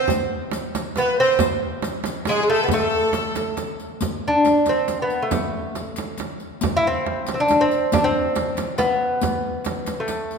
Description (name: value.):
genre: Persian modal ensemble.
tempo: 92 BPM (dotted quarters).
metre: 6/8.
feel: straight.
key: A avaz esfahan.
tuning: A4 = 441 Hz.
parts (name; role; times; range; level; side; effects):
lute; melody; 0.0-10.4 s; G#3 to E4; -20 LUFS; equal; none.
breathy ney; second line; 0.0-3.5 s; G#4 to C5; -28 LUFS; left 1 dB; none.
bright chamber violin section; second line; 0.0-3.5 s; G#4 to C5; -26 LUFS; right 2 dB; none.
frame drum; percussion; 0.1-10.2 s; none; -27 LUFS; right 4 dB; none.
riq; percussion; 0.1-10.4 s; none; -32 LUFS; left 6 dB; none.
room: wet concert hall reverb, RT60 2.1 s.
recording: minimal, uncompressed stereo recording.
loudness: -19 LUFS.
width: side -5 dB against mid.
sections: 0.0-4.0 A section; 4.0-10.4 B section.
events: none.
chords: none.